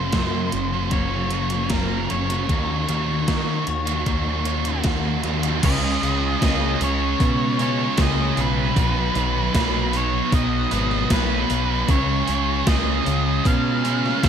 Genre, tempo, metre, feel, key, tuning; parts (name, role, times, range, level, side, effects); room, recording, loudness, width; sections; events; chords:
rock, shoegaze and dream pop; 77 BPM; 4/4; straight; Db mixolydian from 5.6 s; A4 = 437 Hz
octave-fuzz lead guitar; melody; 0.0-14.3 s; Bb4 to F5; -27 LUFS; left 1 dB; distortion, tape echo
biting overdriven guitar; riff; 0.0-14.3 s; Gb2 to Cb5; -25 LUFS; right 12 dB; reverse reverb
thick fuzz guitar; riff; 0.0-14.3 s; Gb2 to Eb4; -27 LUFS; left 11 dB; distortion, ensemble chorus
growling picked electric bass; bass; 0.0-14.3 s; Gb1 to Eb3; -25 LUFS; equal; overdrive
twelve-string electric guitar; arpeggios; 0.1-5.6 s; Bb3 to Gb4; -35 LUFS; left 5 dB; ensemble chorus, tape echo
gated 80s digital drum machine; drums; 0.1-14.3 s; crash cymbal, hi-hat, kick drum, snare drum; -24 LUFS; equal; gated reverb, gated reverb snare, overdrive
light reverb, digital ambience; -19 LUFS; side -8 dB against mid
0.0-5.6 A section; 5.6-14.3 B section
0.0 Gb; 2.5 Ebm7; 5.6 Dbadd9; 8.8 Cb; 11.9 Dbadd9